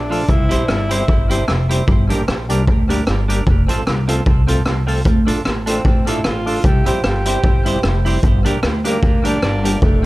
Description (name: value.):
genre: ska.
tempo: 151 BPM.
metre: 4/4.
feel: swing 56% on 8ths.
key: unclear.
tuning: A4 = 439 Hz.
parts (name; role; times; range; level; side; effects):
breathy tenor saxophone; melody; 0.0-1.7, 5.7-10.1 s; A3 to G4; -24 LUFS; equal; tape echo.
upright bass; bass; 0.0-10.0 s; F1 to D2; -19 LUFS; equal; none.
semi-hollow electric guitar; accompaniment; 0.1-10.1 s; C4 to C5; -24 LUFS; right 4 dB; tape echo.
percussive tonewheel organ; stabs; 0.1-9.8 s; F3 to A4; -25 LUFS; left 2 dB; overdrive, chorus vibrato, slow rotary speaker, tape echo.
raw garage drum kit; drums; 0.1-9.9 s; hi-hat, kick drum, rim click; -17 LUFS; equal; none.
room: small room ambience.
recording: dark, warm production.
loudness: -14 LUFS.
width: side -18 dB against mid.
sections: 0.0-10.1 A section.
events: none.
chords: 0.3 C; 1.9 Gm; 3.5 F; 5.1 Dm; 6.6 C; 8.2 Gm.